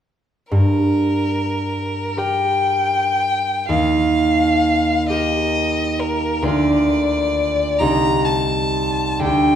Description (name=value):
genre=classical, romantic duo for violin and harp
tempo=35-45 BPM (dotted quarters)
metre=6/8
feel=rubato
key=G minor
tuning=A4 = 440 Hz
part: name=rich violin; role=melody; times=0.5-9.6 s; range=Bb4 to Bb5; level=-20 LUFS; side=left 2 dB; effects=none
part: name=concert harp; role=accompaniment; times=0.5-9.6 s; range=C2 to Bb4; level=-18 LUFS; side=right 1 dB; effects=none
room=wet recital hall reverb, RT60 1.3 s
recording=minimal, uncompressed stereo recording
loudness=-16 LUFS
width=side -9 dB against mid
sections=0.5-9.6 A section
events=none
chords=0.5 Gm; 3.7 Eb; 6.4 Bb/D; 7.8 Cm